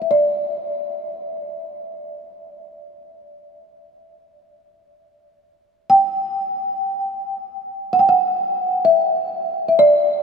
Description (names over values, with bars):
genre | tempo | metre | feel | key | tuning
caucasian folk, Caucasian lament | free time | none | none | unclear | A4 = 440 Hz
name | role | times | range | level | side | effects
folk marimba with soft mallets | solo | 0.0-10.2 s | D5 to G5 | -17 LUFS | equal | none
room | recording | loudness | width
wet huge ambient reverb, RT60 8.1 s | in a vast, echoing space | -16 LUFS | side -5 dB against mid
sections
0.0-10.2 A section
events
none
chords
none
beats
free time